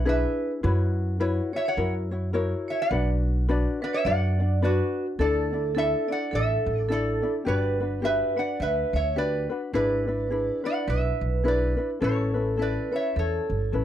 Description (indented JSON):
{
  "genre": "Hawaiian",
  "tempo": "105 BPM",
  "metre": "4/4",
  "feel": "swing 60% on 8ths",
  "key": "B minor, D major from 5.2 s",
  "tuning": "A4 = 439 Hz",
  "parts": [
    { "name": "metal-body resonator slide guitar", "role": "melody", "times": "0.0-13.8 s", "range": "F#4 to F#5", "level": "-29 LUFS", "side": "equal", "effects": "none" },
    { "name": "vibraphone with medium hard mallets", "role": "second line", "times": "0.0-13.8 s", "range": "F#4 to D5", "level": "-30 LUFS", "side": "right 4 dB", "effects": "none" },
    { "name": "ukulele", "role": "accompaniment", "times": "0.0-13.8 s", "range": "C#4 to D5", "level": "-29 LUFS", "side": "left 4 dB", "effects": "none" },
    { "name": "upright bass", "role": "bass", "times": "0.0-13.8 s", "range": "G1 to F#2", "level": "-26 LUFS", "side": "equal", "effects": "none" }
  ],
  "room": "little or no reverb",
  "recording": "dry, close 1970s-style studio recording",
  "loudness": "-23 LUFS",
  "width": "side -11 dB against mid",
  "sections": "0.0-5.2 A section; 5.2-13.8 B section",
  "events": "none",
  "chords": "0.0 E7; 0.6 F#7sus4; 1.8 F#7; 2.9 Bm; 5.2 Dsus2; 7.5 Gmaj7; 9.7 E7/G#; 12.0 Aadd9"
}